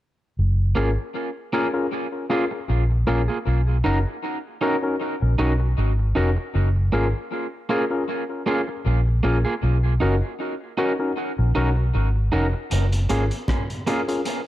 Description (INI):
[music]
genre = lovers rock reggae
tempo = 78 BPM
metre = 4/4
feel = swing 55% on 16ths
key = F# major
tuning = A4 = 440 Hz
[part]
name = vintage muted fingered electric bass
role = bass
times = 0.4-13.3 s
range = E#1 to B1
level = -20 LUFS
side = equal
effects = none
[part]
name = overdriven tine electric piano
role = accompaniment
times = 0.8-14.2 s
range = C#4 to A#4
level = -26 LUFS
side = left 2 dB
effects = tape echo
[part]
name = electric guitar at the edge of break-up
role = stabs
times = 0.8-14.0 s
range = A#3 to A#4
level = -27 LUFS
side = right 3 dB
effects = tape echo
[part]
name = crunchy breakbeat drum kit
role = drums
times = 12.7-14.5 s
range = hi-hat, kick drum, rim click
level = -28 LUFS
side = equal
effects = none
[part]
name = bongos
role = percussion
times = 13.1-14.1 s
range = none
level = barely audible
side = none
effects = none
[sound]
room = light reverb, small room ambience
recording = dark, warm production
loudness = -20 LUFS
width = side -14 dB against mid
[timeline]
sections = 0.4-14.5 A section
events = none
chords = 0.4 F#maj9 (rootless); 3.5 Bmaj7; 6.5 F#maj9 (rootless); 9.6 Bmaj7; 12.7 F#maj9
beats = | 0.38 1.15 1.92 2.69 | 3.46 4.23 5.00 5.77 | 6.54 7.31 8.08 8.86 | 9.63 10.40 11.17 11.94 | 12.71 13.48 14.26